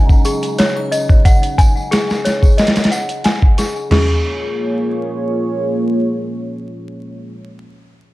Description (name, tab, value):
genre	trip hop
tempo	90 BPM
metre	4/4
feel	straight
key	Bb minor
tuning	A4 = 440 Hz
part	dark analog pad	sustained chords	0.0-7.3 s	Bb3 to Eb5	-22 LUFS	right 1 dB	chorus
part	small celesta	arpeggios	0.0-8.1 s	Ab4 to Ab5	-20 LUFS	left 2 dB	vintage 12-bit sampler grit, low-pass filter, ping-pong delay
part	wind-like tuned noise texture	texture	0.0-3.9 s	Eb4	-33 LUFS	right 2 dB	built-in reverb
part	dusty soul sampler-style drum kit	drums	0.1-4.1 s	crash cymbal, hi-hat, kick drum, snare drum, toms	-12 LUFS	equal	overdrive, studio reverb
part	tambourine and triangle	percussion	0.1-3.9 s	none	-32 LUFS	right 1 dB	none
room	light reverb, digital ambience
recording	dark, warm production, vinyl crackle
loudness	-13 LUFS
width	side -18 dB against mid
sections	0.0-3.9 A section; 3.9-6.6 B section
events	filter sweep on celesta 0.0-3.9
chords	0.0 Ab7sus4; 3.9 Bbm7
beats	0.58 | 1.25 1.92 2.58 3.25 | 3.92 4.58 5.25 5.92